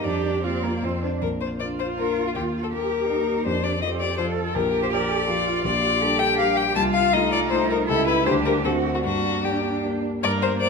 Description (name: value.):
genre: quick classical-period movement for piano quartet.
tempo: 149-166 BPM.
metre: 3/4.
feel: rubato.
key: Bb major, G minor from 5.7 s.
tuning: A4 = 440 Hz.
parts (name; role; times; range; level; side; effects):
rich violin; melody; 0.0-10.7 s; F4 to A5; -24 LUFS; left 7 dB; none.
warm cello; second line; 0.0-10.7 s; Bb3 to A4; -28 LUFS; right 6 dB; none.
dark concert grand piano; accompaniment; 0.0-10.7 s; Bb1 to C5; -26 LUFS; left 1 dB; none.
dark viola; accompaniment; 0.0-10.7 s; Bb3 to C5; -30 LUFS; right 4 dB; none.
room: wet recital hall reverb, RT60 1.7 s.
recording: minimal, uncompressed stereo recording.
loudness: -20 LUFS.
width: side -4 dB against mid.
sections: 0.0-1.2 A section; 1.2-10.2 B section.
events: none.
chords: 0.0 Bb/F; 0.8 F5; 1.2 Bb; 2.4 Eb; 3.5 F; 4.6 Bb; 5.7 Gm/Bb; 6.8 Adim/C; 7.9 A7/C#; 8.3 Gm/D; 8.6 D7; 9.0 Gm.